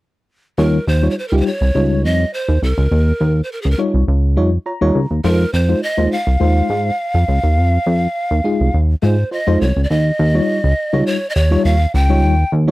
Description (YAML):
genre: early-eighties boogie funk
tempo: 103 BPM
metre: 4/4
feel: straight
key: unclear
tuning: A4 = 440 Hz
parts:
  - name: breathy polished pan flute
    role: melody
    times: 0.6-12.5 s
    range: Ab4 to G5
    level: -21 LUFS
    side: right 1 dB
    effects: slapback echo
  - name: FM electric piano with auto-pan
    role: accompaniment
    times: 0.6-12.7 s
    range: G3 to Bb5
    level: -18 LUFS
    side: left 1 dB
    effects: none
  - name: chorused synth bass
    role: bass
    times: 0.6-12.7 s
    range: C2 to Ab2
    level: -14 LUFS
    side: equal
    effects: none
room: little or no reverb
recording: dry, close 1970s-style studio recording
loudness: -14 LUFS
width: side -18 dB against mid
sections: 0.6-9.9 A section; 9.9-12.7 B section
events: FM electric piano fill 4.4-5.2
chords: 0.6 Eb9; 5.2 Fm7; 9.9 Eb9